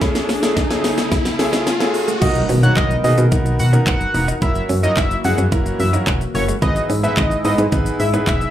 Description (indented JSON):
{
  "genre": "dance-pop",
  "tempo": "109 BPM",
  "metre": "4/4",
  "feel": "straight",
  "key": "B major",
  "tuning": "A4 = 441 Hz",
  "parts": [
    { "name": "bright grand piano", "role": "accompaniment", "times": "0.0-8.4 s", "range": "A3 to C#5", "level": "-23 LUFS", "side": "equal", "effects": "sidechain pumping, slapback echo" },
    { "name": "chorused pulse-width pad", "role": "sustained chords", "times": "0.0-8.5 s", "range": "C#3 to A#4", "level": "-27 LUFS", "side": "left 1 dB", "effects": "sidechain pumping" },
    { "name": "direct-recorded clean electric guitar", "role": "riff", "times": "0.0-8.4 s", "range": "G#3 to F#4", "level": "-27 LUFS", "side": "right 6 dB", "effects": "wide subtle chorus, slapback echo" },
    { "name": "pop drum kit", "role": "drums", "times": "0.0-8.5 s", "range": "crash cymbal, handclaps, hi-hat, kick drum, shaker, snare drum", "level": "-21 LUFS", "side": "equal", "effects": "none" },
    { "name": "riser and impact", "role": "sound effects", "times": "0.0-4.4 s", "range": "none", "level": "-24 LUFS", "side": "equal", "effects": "slapback echo" },
    { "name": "fat analog lead", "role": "melody", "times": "2.2-8.5 s", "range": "C#5 to F#5", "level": "-22 LUFS", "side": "equal", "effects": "chorus, sidechain pumping, slapback echo" },
    { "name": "solid FM bass", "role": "bass", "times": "2.2-8.5 s", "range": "E1 to B2", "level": "-18 LUFS", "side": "equal", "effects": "sidechain pumping" }
  ],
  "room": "light reverb",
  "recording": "live gig heard through the venue's PA, club reverb",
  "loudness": "-15 LUFS",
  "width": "side -11 dB against mid",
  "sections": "0.0-2.2 A section; 2.2-8.5 B section",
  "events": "build-up 0.0-2.2; drum fill 0.0-2.2; riser 0.0-2.2; drop 2.2-8.5; impact 2.2-4.4",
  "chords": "0.0 Amaj7; 2.2 Bmaj7; 4.4 F#7; 6.6 Emaj7/G#"
}